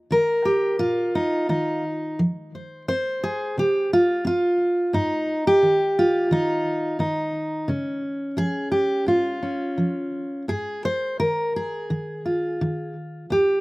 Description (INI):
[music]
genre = folk, solo fingerstyle acoustic guitar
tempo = 86 BPM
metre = 4/4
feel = straight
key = unclear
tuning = A4 = 440 Hz
[part]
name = fingerpicked steel-string acoustic guitar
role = solo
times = 0.0-13.6 s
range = Eb2 to C5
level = -21 LUFS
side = equal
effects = none
[sound]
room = little or no reverb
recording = recorded outdoors, with no room sound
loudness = -21 LUFS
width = side -22 dB against mid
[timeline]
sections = 0.0-13.6 A section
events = none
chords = 0.0 Eb5; 2.2 F5; 4.9 Ab5; 7.7 Db; 10.5 Ab5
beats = 0.10 0.80 1.49 | 2.19 2.88 3.57 4.25 | 4.93 5.62 6.31 7.00 | 7.68 8.38 9.07 9.78 | 10.49 11.19 11.89 12.59 | 13.28